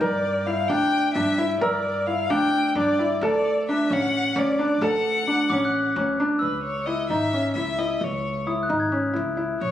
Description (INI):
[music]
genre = contemporary instrumental, chamber music in an uneven meter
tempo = 262 BPM (eighths)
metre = 7/8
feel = straight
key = unclear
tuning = A4 = 440 Hz
[part]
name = rich violin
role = melody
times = 0.0-9.7 s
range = B4 to G5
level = -26 LUFS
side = left 2 dB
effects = none
[part]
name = felt-muted upright piano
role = arpeggios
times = 0.0-9.6 s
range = C#4 to Bb4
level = -23 LUFS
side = equal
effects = none
[part]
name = upright bass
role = bass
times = 0.0-9.7 s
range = G#1 to G2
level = -32 LUFS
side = equal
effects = none
[part]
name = glockenspiel with soft plastic mallets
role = texture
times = 1.6-2.7, 5.5-9.7 s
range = D6 to G#6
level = -31 LUFS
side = equal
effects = none
[sound]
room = moderate scoring stage reverb, RT60 1.5 s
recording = recorded on a phone in the room, club reverb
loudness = -21 LUFS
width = side -11 dB against mid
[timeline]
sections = 0.0-6.4 A section; 6.4-9.7 B section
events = none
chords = 0.0 Gm; 3.2 D; 6.4 C#m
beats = | 0.00 0.23 0.46 0.69 0.92 1.15 1.38 | 1.61 1.84 2.06 2.29 2.52 2.75 2.98 | 3.21 3.44 3.67 3.90 4.12 4.35 4.58 | 4.81 5.04 5.27 5.50 5.73 5.96 6.18 | 6.41 6.64 6.87 7.10 7.33 7.56 7.79 | 8.02 8.24 8.47 8.70 8.93 9.16 9.39 | 9.62